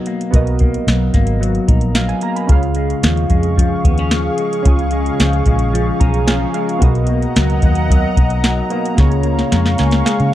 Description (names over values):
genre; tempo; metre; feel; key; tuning
indie pop, bedroom pop; 111 BPM; 4/4; straight; Db mixolydian; A4 = 442 Hz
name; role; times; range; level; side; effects
semi-hollow electric guitar; accompaniment; 0.0-10.3 s; Cb3 to Eb4; -21 LUFS; left 6 dB; lush chorus, warbly pitch drift
warbly lo-fi synth keys; accompaniment; 0.0-10.3 s; Bb3 to Cb6; -22 LUFS; right 5 dB; chorus
soft vintage rhythm box; drums; 0.1-10.3 s; hi-hat, kick drum, snare drum; -15 LUFS; equal; none
vintage muted fingered electric bass; bass; 0.3-10.3 s; Ab1 to Db3; -17 LUFS; equal; none
lush unison pad; sustained chords; 2.9-10.3 s; Ab4 to Db6; -22 LUFS; equal; chorus
room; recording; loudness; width
little or no reverb; dry, close 1970s-style studio recording; -13 LUFS; side -13 dB against mid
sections
0.0-10.3 A section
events
synth keys fill 5.7-6.8, 9.5-10.3; drum fill 9.0-10.3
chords
0.0 Cbmaj7; 2.5 Db; 6.8 Cbmaj7; 9.0 Db6